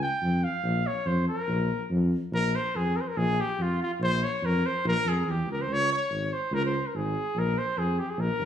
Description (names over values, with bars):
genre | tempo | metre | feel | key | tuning
balkan folk | 143 BPM | 2/4 | straight | unclear | A4 = 442 Hz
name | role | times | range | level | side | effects
warm trumpet | melody | 0.0-8.5 s | F4 to G5 | -28 LUFS | equal | none
mellow tuba | bass | 0.0-8.5 s | G1 to F2 | -28 LUFS | equal | none
room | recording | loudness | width
moderate recital hall reverb, RT60 1.2 s | studio reverb | -25 LUFS | side -9 dB against mid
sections
0.0-2.3 A section; 2.3-8.5 B section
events
trumpet solo 0.0-2.3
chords
0.0 N.C.; 0.6 Bb5; 5.7 Db5; 7.4 Bb5